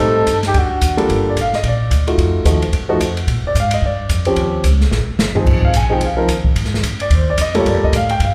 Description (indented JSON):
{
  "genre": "jazz, small-group swing and bop",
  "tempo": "219 BPM",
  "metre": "4/4",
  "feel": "swing 60% on 8ths",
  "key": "G minor",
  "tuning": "A4 = 440 Hz",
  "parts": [
    { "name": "breathy flugelhorn", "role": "melody", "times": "0.0-1.0 s", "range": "F#4 to A4", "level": "-20 LUFS", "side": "equal", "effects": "slapback echo" },
    { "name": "mellow alto saxophone", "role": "second line", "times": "0.0-1.0 s", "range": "D4 to Eb4", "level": "-28 LUFS", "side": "equal", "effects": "slapback echo" },
    { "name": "warm grand piano", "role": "accompaniment", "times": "0.0-8.3 s", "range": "F3 to Ab5", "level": "-20 LUFS", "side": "equal", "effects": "slapback echo" },
    { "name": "upright bass", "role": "bass", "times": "0.0-8.3 s", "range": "G1 to Bb2", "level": "-20 LUFS", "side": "equal", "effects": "none" },
    { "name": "open jazz drum kit", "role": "drums", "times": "0.3-8.3 s", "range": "crash cymbal, hi-hat, kick drum, ride cymbal, snare drum, toms", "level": "-23 LUFS", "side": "equal", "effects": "none" }
  ],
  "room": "light reverb, small room ambience",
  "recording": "live gig heard through the venue's PA, club reverb",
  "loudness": "-16 LUFS",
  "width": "mono",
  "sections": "0.0-1.1 A section; 1.1-8.3 B section",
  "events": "drum fill 4.9-5.5",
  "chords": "0.0 Am7b5; 0.5 D; 1.1 Gm9; 2.2 F7b9; 3.3 Bb6; 4.4 Eb13; 5.5 Ab6; 6.6 Ab5; 7.7 Gm9"
}